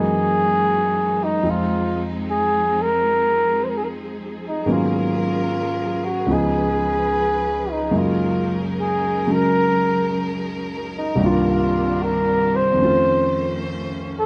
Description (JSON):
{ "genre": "jazz ballad", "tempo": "74 BPM", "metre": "4/4", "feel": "swing 67% on 8ths", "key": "unclear", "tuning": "A4 = 440 Hz", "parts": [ { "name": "mellow flugelhorn", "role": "melody", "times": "0.0-14.3 s", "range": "Eb4 to C5", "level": "-22 LUFS", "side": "equal", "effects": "none" }, { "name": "warm concert grand piano", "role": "accompaniment", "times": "0.0-14.3 s", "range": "C2 to F4", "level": "-24 LUFS", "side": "equal", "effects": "none" }, { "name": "rich chamber string section", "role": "sustained chords", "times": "0.0-14.3 s", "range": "Eb3 to C5", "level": "-32 LUFS", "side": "equal", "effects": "none" } ], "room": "light reverb", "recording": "close, detailed microphones", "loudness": "-20 LUFS", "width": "mono", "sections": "0.0-14.3 A section", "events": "none", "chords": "0.0 Gb13; 1.4 Fm7; 4.6 Abm11; 6.3 Db7; 7.9 Gb69; 11.2 Cm11; 12.8 F7b13" }